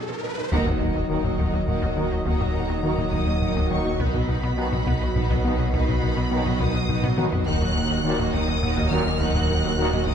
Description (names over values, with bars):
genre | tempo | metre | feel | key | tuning
cinematic, hybrid orchestral and electronic film score | 69 BPM (dotted quarters) | 6/8 | straight | Eb minor | A4 = 439 Hz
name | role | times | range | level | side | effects
analog drone | sustained chords | 0.0-10.1 s | F#3 to D#5 | -31 LUFS | right 1 dB | chorus
resonant blip pluck | arpeggios | 0.0-10.1 s | Eb3 to B4 | -35 LUFS | left 1 dB | none
riser and impact | sound effects | 0.0-2.3 s | none | -32 LUFS | equal | none
clear studio viola section | accompaniment | 0.1-10.1 s | D#3 to D#4 | -31 LUFS | right 1 dB | none
rich symphonic cello section | bass | 0.1-10.1 s | Eb2 to Eb3 | -32 LUFS | right 5 dB | none
warm symphonic violin section | melody | 0.2-10.1 s | Bb5 to Gb6 | -33 LUFS | left 2 dB | none
warm symphonic violin section | second line | 0.5-10.1 s | Gb4 to Gb5 | -34 LUFS | left 1 dB | none
rubbery square bass | riff | 0.5-10.1 s | Eb2 to B3 | -28 LUFS | left 3 dB | none
clear symphonic double bass section | bass | 0.5-10.1 s | B1 to Eb2 | -30 LUFS | right 3 dB | none
punchy sub bass | bass | 0.5-10.1 s | Eb1 to B1 | -32 LUFS | equal | none
solo taiko drums | drums | 0.5-10.1 s | none | -28 LUFS | equal | none
warm French horn section | sustained chords | 1.1-9.9 s | F#3 to Gb4 | -33 LUFS | left 4 dB | none
warm trombone section | sustained chords | 1.1-9.9 s | Bb2 to Eb3 | -34 LUFS | right 3 dB | none
room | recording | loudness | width
moderate scoring stage reverb, RT60 1.6 s | dark, warm production | -21 LUFS | side -8 dB against mid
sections
0.5-10.1 A section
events
riser 0.0-0.5; band accent 0.5-1.1; impact 0.5-2.3; drum fill 7.0-7.5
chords
0.0 B; 0.5 Ebm; 4.0 B; 7.5 Ebm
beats
| 0.52 1.39 | 2.26 3.12 | 4.00 4.86 | 5.73 6.60 | 7.47 8.34 | 9.21 10.08